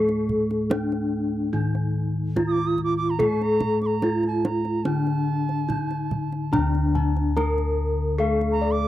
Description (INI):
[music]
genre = Javanese gamelan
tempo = 72 BPM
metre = 4/4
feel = straight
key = D pelog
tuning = A4 = 439 Hz
[part]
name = gamelan-type bronze metallophone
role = melody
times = 0.0-8.9 s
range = D4 to Bb4-20c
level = -25 LUFS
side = left 1 dB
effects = none
[part]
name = gamelan-type bronze metallophone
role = accompaniment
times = 0.0-8.9 s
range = D3 to A3-30c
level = -28 LUFS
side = equal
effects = none
[part]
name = gamelan-type bossed gongs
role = bass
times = 0.0-8.9 s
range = D2 to A4-30c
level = -27 LUFS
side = left 1 dB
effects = none
[part]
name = kendang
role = percussion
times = 0.1-8.5 s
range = none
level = -30 LUFS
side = right 2 dB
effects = none
[part]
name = bright reedy bansuri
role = second line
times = 2.5-8.9 s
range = A5-34c to Eb6+20c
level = -30 LUFS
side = right 7 dB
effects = none
[part]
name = gamelan-type bossed gongs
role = arpeggios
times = 6.5-8.9 s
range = D5 to Bb5-20c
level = -30 LUFS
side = left 3 dB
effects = none
[sound]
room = light reverb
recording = dry, close 1970s-style studio recording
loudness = -21 LUFS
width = side -13 dB against mid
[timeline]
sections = 0.0-8.9 A section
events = none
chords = none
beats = 0.71 1.54 2.37 | 3.20 4.04 4.87 5.70 | 6.53 7.36 8.19